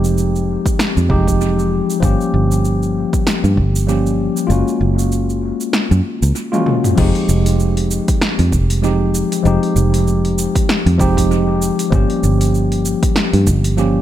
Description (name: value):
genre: sunset chillout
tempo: 97 BPM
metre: 4/4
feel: swing 57% on 16ths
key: F minor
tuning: A4 = 440 Hz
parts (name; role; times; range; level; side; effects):
- tine electric piano; accompaniment; 0.0-14.0 s; F3 to G4; -17 LUFS; moving between left 5 dB and right 3 dB; auto-pan, dub echo
- fingered electric bass; bass; 0.0-14.0 s; F1 to G2; -16 LUFS; equal; none
- deep house drum kit; drums; 0.0-13.9 s; cabasa, crash cymbal, hi-hat, snare drum, toms; -22 LUFS; equal; overdrive, analog delay
- electronic kick drum; drums; 0.7-13.6 s; none; -18 LUFS; equal; overdrive
room: light reverb, digital ambience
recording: echo-heavy mix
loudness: -13 LUFS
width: side -12 dB against mid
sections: 0.0-7.0 A section; 7.0-14.0 B section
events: kick drops out 4.5-7.0; drum fill 6.5-7.0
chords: 0.0 Fm9; 2.0 Gm7b5; 4.5 Gbmaj9; 7.0 Fm9; 11.9 Gm7b5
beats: 0.17 0.79 1.41 | 2.03 2.65 3.26 3.88 | 4.50 5.12 5.74 6.36 | 6.97 7.59 8.21 8.83 | 9.45 10.07 10.69 11.30 | 11.92 12.54 13.16 13.78